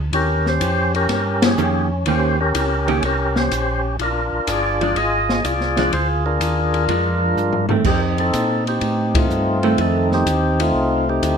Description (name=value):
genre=soul jazz organ trio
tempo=124 BPM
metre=4/4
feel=swing 69% on 8ths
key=Bb mixolydian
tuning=A4 = 440 Hz
part: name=mellow tonewheel organ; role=bass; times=0.0-11.4 s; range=G1 to Bb2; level=-22 LUFS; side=equal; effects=chorus vibrato, slow rotary speaker
part: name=percussive tonewheel organ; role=melody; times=0.1-11.4 s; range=A3 to Eb5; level=-19 LUFS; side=left 1 dB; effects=slow rotary speaker
part: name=open jazz drum kit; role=drums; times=0.1-11.4 s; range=crash cymbal, hi-hat, kick drum, ride cymbal, snare drum, toms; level=-24 LUFS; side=left 1 dB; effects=none
part: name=vintage hollow-body jazz guitar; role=accompaniment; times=1.6-10.2 s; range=Eb3 to G4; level=-21 LUFS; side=right 5 dB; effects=none
room=light reverb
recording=minimal, uncompressed stereo recording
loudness=-16 LUFS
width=side -6 dB against mid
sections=0.0-11.4 A section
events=band accent 1.3, 9.1; drum fill 7.4-7.9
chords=0.1 Eb7; 4.0 Bb7; 7.9 F7